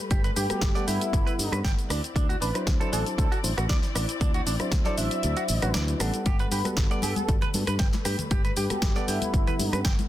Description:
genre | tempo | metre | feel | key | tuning
nu-disco, nu disco | 117 BPM | 4/4 | straight | G major | A4 = 442 Hz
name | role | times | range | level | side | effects
dark studio string section | sustained chords | 0.0-10.1 s | G3 to D5 | -38 LUFS | left 4 dB | sidechain pumping
direct-recorded clean electric guitar | riff | 0.1-9.9 s | D4 to G5 | -34 LUFS | right 5 dB | lush chorus, analog delay
modern bright fingered electric bass | bass | 0.1-9.9 s | G1 to G2 | -29 LUFS | equal | none
electronic kick drum | drums | 0.1-10.0 s | none | -25 LUFS | equal | none
house drum kit | drums | 0.1-10.1 s | cabasa, hi-hat, rim click, snare drum | -32 LUFS | left 1 dB | none
wide unison lead | melody | 0.4-9.8 s | E4 to E5 | -33 LUFS | equal | analog chorus, analog delay
reed electric piano | accompaniment | 0.5-10.1 s | F#3 to F#5 | -33 LUFS | equal | sidechain pumping, analog delay
congas | percussion | 6.3-10.1 s | none | -36 LUFS | left 5 dB | none
room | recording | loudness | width
little or no reverb | dense, heavily limited modern master | -23 LUFS | side -13 dB against mid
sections
0.0-10.1 A section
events
kick drops out 5.2-6.3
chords
0.0 Gmaj9; 1.9 D9; 6.3 Gmaj9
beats
| 0.11 0.62 1.13 1.65 | 2.16 2.67 3.19 3.70 | 4.21 4.72 5.24 5.75 | 6.26 6.77 7.29 7.80 | 8.31 8.83 9.34 9.85

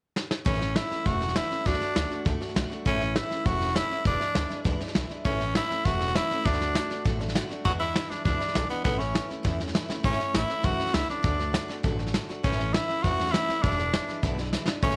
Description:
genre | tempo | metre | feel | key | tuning
rockabilly | 200 BPM | 4/4 | straight | A major | A4 = 440 Hz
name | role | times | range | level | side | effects
soft brush drum kit | drums | 0.2-14.9 s | hi-hat, kick drum, snare drum | -31 LUFS | equal | none
picked steel-string acoustic guitar | accompaniment | 0.4-15.0 s | E2 to F#4 | -36 LUFS | equal | none
raspy tenor saxophone | melody | 0.5-15.0 s | B3 to F#4 | -31 LUFS | equal | slapback echo
upright bass | bass | 0.5-14.9 s | E1 to E2 | -34 LUFS | equal | none
room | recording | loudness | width
light reverb, small room ambience | none | -27 LUFS | mono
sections
0.5-10.0 A section; 10.0-15.0 A section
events
drum fill 0.2, 9.9, 14.5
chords
0.5 A; 1.7 D; 2.9 A; 4.1 E7; 5.3 A; 6.5 D; 7.7 E7; 8.8 A; 11.2 D; 12.4 A; 13.6 E7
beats
0.16 | 0.46 0.76 1.06 1.36 | 1.66 1.96 2.26 2.56 | 2.86 3.16 3.46 3.76 | 4.06 4.36 4.66 4.96 | 5.26 5.56 5.86 6.16 | 6.46 6.75 7.05 7.35 | 7.65 7.95 8.25 8.55 | 8.85 9.15 9.45 9.75 | 10.05 10.35 10.64 10.94 | 11.24 11.54 11.84 12.14 | 12.44 12.73 13.03 13.33 | 13.63 13.93 14.23 14.53 | 14.83

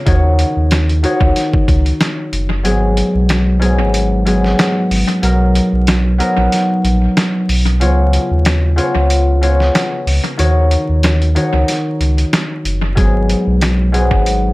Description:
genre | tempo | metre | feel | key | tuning
hip hop, boom-bap hip-hop | 93 BPM | 4/4 | swing 55% on 16ths | G# dorian | A4 = 440 Hz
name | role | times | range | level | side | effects
concert harp | accompaniment | 0.0-14.5 s | G#2 to C#5 | -16 LUFS | equal | cassette tape, high-pass filter, low-pass filter
warm sub bass | bass | 0.1-14.5 s | F#1 to D#2 | -14 LUFS | equal | none
trip hop sampler-style drum kit | drums | 0.1-14.4 s | hi-hat, kick drum, snare drum | -18 LUFS | equal | overdrive, analog delay
room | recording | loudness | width
little or no reverb | echo-heavy mix, vinyl crackle | -12 LUFS | side -20 dB against mid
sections
0.0-14.5 A section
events
kick muted 2.6-13.0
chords
0.1 D#m7; 2.6 G#m7; 5.2 Bmaj7; 7.8 C#7; 10.4 D#m7; 13.0 G#m7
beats
| 0.07 0.71 1.36 2.00 | 2.65 3.29 3.94 4.58 | 5.23 5.87 6.52 7.16 | 7.81 8.45 9.10 9.74 | 10.39 11.03 11.68 12.32 | 12.97 13.62 14.26

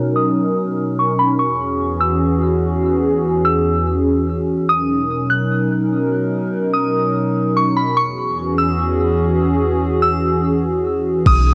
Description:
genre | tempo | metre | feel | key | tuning
hip hop, atmospheric cloud-rap | 146 BPM | 4/4 | half-time | unclear | A4 = 443 Hz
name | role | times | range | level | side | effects
hollow soft pad | sustained chords | 0.0-11.5 s | E2 to A#4 | -19 LUFS | equal | chorus, sidechain pumping, low-pass filter
glassy synth bell | melody | 0.2-11.5 s | B5 to F#6 | -22 LUFS | equal | chorus, tremolo, low-pass filter, tape echo
clean 808-style bass | bass | 11.3-11.5 s | B1 | -15 LUFS | equal | none
smooth R&B drum kit | drums | 11.3-11.4 s | crash cymbal, kick drum | -20 LUFS | equal | cassette tape
room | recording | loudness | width
light reverb | home recording on cassette | -18 LUFS | mono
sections
0.0-11.3 A section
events
filter sweep 0.0-11.3; hi-hats muted 11.3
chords
0.0 Bmaj7; 1.4 E6; 4.7 Bmaj7; 8.0 E6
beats
0.16 0.57 0.98 | 1.40 1.81 2.22 2.63 | 3.04 3.45 3.86 4.27 | 4.68 5.09 5.51 5.92 | 6.33 6.74 7.15 7.56 | 7.97 8.38 8.79 9.21 | 9.62 10.03 10.44 10.85 | 11.26

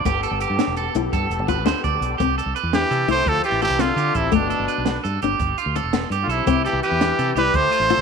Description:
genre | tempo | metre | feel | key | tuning
highlife guitar band | 112 BPM (dotted quarters) | 12/8 | straight | C major | A4 = 440 Hz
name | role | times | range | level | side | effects
bright tonewheel organ | sustained chords | 0.0-2.2 s | B3 to A4 | -30 LUFS | left 9 dB | wide subtle chorus
electric guitar at the edge of break-up | arpeggios | 0.0-8.0 s | F4 to D5 | -24 LUFS | right 10 dB | warbly pitch drift, tape echo
fingered electric bass | bass | 0.0-8.0 s | E1 to D3 | -26 LUFS | equal | none
flamenco guitar | accompaniment | 0.1-8.0 s | A3 to F4 | -25 LUFS | left 13 dB | none
compact cocktail drum kit | drums | 0.1-8.0 s | hi-hat, kick drum, snare drum | -27 LUFS | right 4 dB | none
bright trumpet | melody | 2.7-8.0 s | D4 to C5 | -21 LUFS | right 2 dB | none
brilliant trombone | second line | 2.7-8.0 s | B2 to A3 | -28 LUFS | left 11 dB | none
room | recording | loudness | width
moderate echo chamber reverb, RT60 2.0 s, small room ambience | 1960s-style stereo with parts hard left and right | -18 LUFS | side -6 dB against mid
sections
0.0-2.2 A section; 2.2-8.0 B section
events
none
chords
0.1 Gadd9; 2.2 Cadd9; 3.3 Dm7; 4.3 Gadd9; 6.5 Cadd9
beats
| 0.06 0.59 1.12 1.66 | 2.19 2.73 3.26 3.79 | 4.33 4.86 5.39 5.93 | 6.46 7.00 7.53

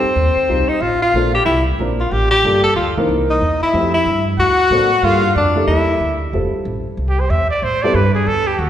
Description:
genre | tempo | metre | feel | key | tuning
jazz, small-group swing and bop | 185 BPM | 4/4 | swing 63% on 8ths | F major | A4 = 440 Hz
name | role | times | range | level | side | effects
warm tenor saxophone | melody | 0.0-6.2 s | C4 to A4 | -16 LUFS | left 2 dB | none
clear trumpet | second line | 0.0-8.7 s | Gb4 to A5 | -21 LUFS | right 2 dB | none
warm baby grand piano | accompaniment | 0.0-7.9 s | E3 to Bb4 | -21 LUFS | equal | none
upright bass | bass | 0.0-8.7 s | F1 to A2 | -20 LUFS | right 1 dB | none
room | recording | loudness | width
wet scoring stage reverb, RT60 1.8 s | recorded in a church or concert hall, nothing above 10.7 kHz | -13 LUFS | side -10 dB against mid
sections
0.0-6.3 A section; 6.3-8.7 B section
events
trumpet solo 6.3-8.7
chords
0.0 F9; 1.1 Bbmaj7; 2.4 Gm9; 3.1 C7#9; 3.7 Fmaj9; 4.4 D7b13; 5.0 Gm7; 5.7 Gm69; 6.3 Fmaj9; 7.6 Am7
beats
0.17 0.49 0.82 | 1.14 1.47 1.79 2.12 | 2.44 2.76 3.09 3.41 | 3.73 4.06 4.38 4.71 | 5.03 5.36 5.68 6.00 | 6.33 6.65 6.97 7.30 | 7.62 7.95 8.27 8.60

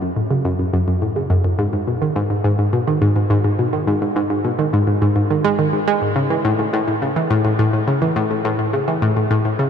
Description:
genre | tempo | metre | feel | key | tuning
ambient | 105 BPM | 4/4 | straight | unclear | A4 = 435 Hz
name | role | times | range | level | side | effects
analog pluck | solo | 0.0-9.6 s | F#2 to G#3 | -16 LUFS | equal | chorus, analog delay
room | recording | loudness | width
moderate huge ambient reverb, RT60 8.7 s | dreamy mix soaked in reverb | -16 LUFS | side -7 dB against mid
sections
0.0-9.7 A section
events
none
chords
none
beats
0.45 1.02 | 1.59 2.17 2.74 3.31 | 3.88 4.45 5.02 5.59 | 6.17 6.74 7.31 7.88 | 8.45 9.02 9.60

